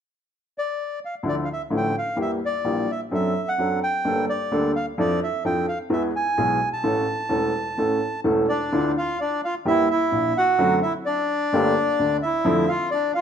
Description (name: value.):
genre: tango.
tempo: 129 BPM.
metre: 4/4.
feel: rubato.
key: D harmonic minor.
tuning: A4 = 440 Hz.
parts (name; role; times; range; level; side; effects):
bandoneon; melody; 0.6-13.2 s; D4 to A5; -23 LUFS; right 1 dB; none.
warm upright piano; accompaniment; 1.2-12.6 s; E1 to A4; -23 LUFS; equal; none.
room: wet large studio reverb, RT60 1.3 s.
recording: minimal, uncompressed stereo recording.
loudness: -20 LUFS.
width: side -8 dB against mid.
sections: 0.0-1.2 A section; 1.2-8.7 B section; 8.7-13.2 C section.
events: none.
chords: 0.0 N.C.; 1.2 Dmadd9; 2.2 Edim; 3.1 D7/F#; 4.0 Gmadd9; 5.0 Dmadd9/F; 5.9 E; 6.8 A; 8.7 Dmadd9; 9.6 Edim; 10.6 D7/F#; 11.5 Gmadd9; 12.4 Dmadd9/F.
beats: 0.30 0.77 | 1.24 1.71 2.18 2.65 | 3.11 3.58 4.04 4.51 | 4.97 5.44 5.90 6.37 | 6.84 7.30 7.77 8.24 | 8.71 9.18 9.65 10.11 | 10.58 11.04 11.51 11.97 | 12.43 12.90.